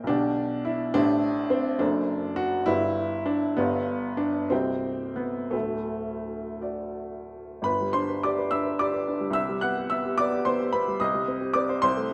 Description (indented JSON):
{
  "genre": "classical, romantic character piece for solo piano",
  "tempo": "55-75 BPM (dotted quarters)",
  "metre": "6/8",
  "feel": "rubato",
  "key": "G major",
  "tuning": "A4 = 440 Hz",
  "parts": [
    { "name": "clear upright piano", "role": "solo", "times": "0.0-12.1 s", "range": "C1 to F#6", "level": "-27 LUFS", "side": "equal", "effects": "none" }
  ],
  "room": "moderate recital hall reverb, RT60 1.4 s",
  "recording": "none",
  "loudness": "-27 LUFS",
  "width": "mono",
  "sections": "0.0-7.7 A section; 7.7-12.1 B section",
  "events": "none",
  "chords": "0.1 G/B; 0.9 Am7; 1.8 D7/F#; 2.7 G; 3.6 G7; 4.5 Cm; 5.5 D; 7.7 G; 9.4 Cmaj7; 11.0 Cm"
}